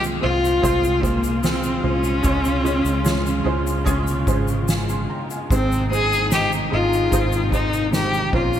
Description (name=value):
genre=pop ballad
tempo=74 BPM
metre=4/4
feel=straight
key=Ab major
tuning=A4 = 439 Hz
part: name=felt-muted upright piano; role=accompaniment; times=0.0-8.6 s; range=Ab2 to C6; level=-25 LUFS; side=right 3 dB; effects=ensemble chorus
part: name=dark studio string section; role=sustained chords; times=0.0-8.6 s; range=Bb2 to F4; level=-28 LUFS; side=left 1 dB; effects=none
part: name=vintage muted fingered electric bass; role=bass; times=0.0-8.6 s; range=Ab1 to Db2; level=-24 LUFS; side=equal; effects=none
part: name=egg shaker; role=percussion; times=0.0-8.6 s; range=none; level=-34 LUFS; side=left 10 dB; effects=none
part: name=warm cello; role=melody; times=0.2-8.6 s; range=Bb3 to Ab4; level=-21 LUFS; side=left 2 dB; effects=ping-pong delay
part: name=soft-mallet drum kit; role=drums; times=0.2-8.5 s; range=kick drum, ride cymbal, snare drum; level=-26 LUFS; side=equal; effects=gated reverb
room=moderate plate reverb, RT60 3.2 s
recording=bright 1980s-style digital production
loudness=-18 LUFS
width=side -10 dB against mid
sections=0.0-8.6 A section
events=none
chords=0.0 Fm/C; 2.2 Db; 5.5 Ab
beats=0.63 1.44 | 2.24 3.05 3.86 4.68 | 5.50 6.32 7.12 7.93